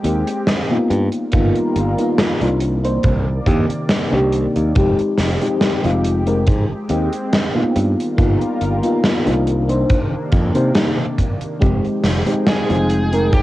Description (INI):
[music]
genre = vaporwave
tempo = 70 BPM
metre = 4/4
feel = swing 53% on 16ths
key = F dorian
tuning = A4 = 441 Hz
[part]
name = mellow FM electric piano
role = accompaniment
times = 0.0-13.3 s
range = Ab3 to C5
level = -19 LUFS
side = left 1 dB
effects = lush chorus, tape echo
[part]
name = lush unison pad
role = sustained chords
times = 0.0-13.4 s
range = C3 to G5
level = -26 LUFS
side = equal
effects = chorus, phaser
[part]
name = modern bright fingered electric bass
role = bass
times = 0.0-13.4 s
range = F1 to C3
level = -19 LUFS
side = equal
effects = tube saturation
[part]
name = gated 80s drum kit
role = drums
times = 0.0-13.4 s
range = hi-hat, snare drum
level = -19 LUFS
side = equal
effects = cassette tape
[part]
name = kick drum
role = drums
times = 1.3-13.4 s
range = none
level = -16 LUFS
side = equal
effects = cassette tape
[part]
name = smooth overdriven lead guitar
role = melody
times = 12.5-13.4 s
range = G4 to Ab4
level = -24 LUFS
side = equal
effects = cassette tape
[sound]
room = light reverb, small room ambience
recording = home recording on cassette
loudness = -15 LUFS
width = side -16 dB against mid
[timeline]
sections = 0.0-13.4 A section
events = none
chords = 0.0 Abmaj7; 0.9 G7alt; 2.6 Cm9; 4.8 Fm9; 6.5 Abmaj7; 7.8 G7alt; 9.5 Cm9; 11.6 Fm9